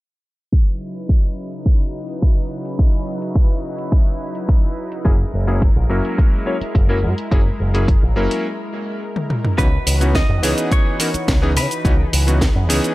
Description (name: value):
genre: nu-disco, nu disco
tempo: 106 BPM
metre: 4/4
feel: straight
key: unclear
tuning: A4 = 440 Hz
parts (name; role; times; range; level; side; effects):
- lush unison pad; sustained chords; 0.5-12.9 s; C#3 to B4; -28 LUFS; equal; chorus, sidechain pumping
- electronic kick drum; drums; 0.5-12.5 s; none; -15 LUFS; equal; small room reverb
- house drum kit; drums; 0.5-12.9 s; hi-hat, shaker, snare drum, toms; -22 LUFS; equal; small room reverb
- clear electric grand piano; accompaniment; 5.0-12.9 s; E3 to C#5; -23 LUFS; left 1 dB; sidechain pumping, tape echo
- picked electric bass with an envelope filter; bass; 5.1-12.8 s; F#1 to C#3; -18 LUFS; equal; none
- direct-recorded clean electric guitar; melody; 9.6-12.1 s; B4 to D#5; -26 LUFS; equal; wide subtle chorus, tape echo
room: little or no reverb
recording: low-pass filter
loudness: -16 LUFS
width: side -18 dB against mid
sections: 0.5-9.6 A section; 9.6-12.9 B section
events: filter sweep 0.5-9.6; break 8.5-9.6; drum fill 9.2-9.6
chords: 0.5 C#m11; 5.1 F#9; 9.6 C#m11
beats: | 0.53 1.09 1.66 2.22 | 2.79 3.36 3.92 4.49 | 5.05 5.62 6.19 6.75 | 7.32 7.88 8.45 9.02 | 9.58 10.15 10.71 11.28 | 11.85 12.41